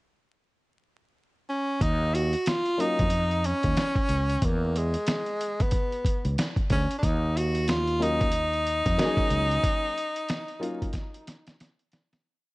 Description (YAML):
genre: hip hop, jazz-hop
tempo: 92 BPM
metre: 4/4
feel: swing 60% on 16ths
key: Eb minor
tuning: A4 = 441 Hz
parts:
  - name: breathy tenor saxophone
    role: melody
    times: 1.5-11.6 s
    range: G#3 to Gb4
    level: -27 LUFS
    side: equal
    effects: none
  - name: fretless electric bass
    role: bass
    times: 1.8-9.6 s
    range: Db2 to F2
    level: -27 LUFS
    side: equal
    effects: none
  - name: dusty soul sampler-style drum kit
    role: drums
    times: 1.8-12.2 s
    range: hi-hat, kick drum, snare drum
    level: -28 LUFS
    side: equal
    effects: overdrive
  - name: dark concert grand piano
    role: accompaniment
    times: 2.8-3.0, 8.0-10.9 s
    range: Gb3 to Ab4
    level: -30 LUFS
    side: left 1 dB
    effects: none
room: small room ambience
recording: dark, warm production, vinyl crackle, nothing above 10.4 kHz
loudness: -24 LUFS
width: side -22 dB against mid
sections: 0.0-1.8 pickup bar; 1.8-12.2 A section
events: break 9.6-12.2; fade-out 9.6-12.2; drum fill 10.9-12.2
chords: 0.0 N.C.; 1.8 Eb7sus2; 4.4 E; 7.0 Ebm7